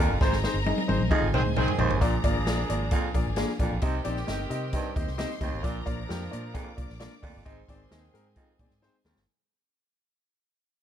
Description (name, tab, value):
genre	uptempo 1960s-style soul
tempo	132 BPM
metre	4/4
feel	straight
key	Bb mixolydian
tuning	A4 = 440 Hz
part	clear studio string section	second line	0.0-9.3 s	G4 to D6	-38 LUFS	left 1 dB	none
part	clear upright piano	accompaniment	0.0-9.2 s	Bb3 to F5	-32 LUFS	left 3 dB	none
part	tonewheel organ	sustained chords	0.0-9.3 s	F3 to Eb4	-41 LUFS	right 1 dB	none
part	raspy baritone saxophone	riff	0.0-9.2 s	Eb2 to C3	-34 LUFS	right 5 dB	none
part	vintage muted fingered electric bass	bass	0.0-9.2 s	G1 to C3	-30 LUFS	equal	none
part	swinging big-band drum kit	drums	0.2-9.3 s	hi-hat, kick drum, snare drum, toms	-29 LUFS	equal	none
part	warm horn section	second line	1.3-9.0 s	Eb3 to Bb4	-36 LUFS	right 3 dB	none
room	little or no reverb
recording	none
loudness	-25 LUFS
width	side -9 dB against mid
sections	0.0-2.0 A section; 2.0-9.3 B section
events	drum fill 0.2-2.0, 8.8-9.3; band accent 0.2-2.0; fade-out 2.0-9.3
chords	0.0 Bb; 3.8 Cm; 5.6 Bb; 7.5 Ab